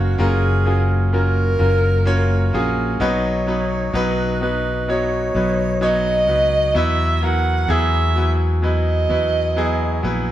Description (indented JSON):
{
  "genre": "pop ballad",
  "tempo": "64 BPM",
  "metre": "4/4",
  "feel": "straight",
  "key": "unclear",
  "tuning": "A4 = 440 Hz",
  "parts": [
    { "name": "breathy alto saxophone", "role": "melody", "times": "0.0-10.0 s", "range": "F#4 to F#5", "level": "-22 LUFS", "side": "right 2 dB", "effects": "none" },
    { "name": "clear concert grand piano", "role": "accompaniment", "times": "0.0-10.3 s", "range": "B2 to E#5", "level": "-21 LUFS", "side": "equal", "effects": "none" },
    { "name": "fingered electric bass", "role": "bass", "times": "0.0-10.3 s", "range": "F#1 to E2", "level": "-19 LUFS", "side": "equal", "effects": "none" }
  ],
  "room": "moderate stone room reverb, RT60 1.1 s",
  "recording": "band playing live in one room",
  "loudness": "-16 LUFS",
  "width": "side -12 dB against mid",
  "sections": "0.0-10.3 A section",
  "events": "none",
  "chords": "0.0 F#maj7; 3.0 B; 6.8 Esus2"
}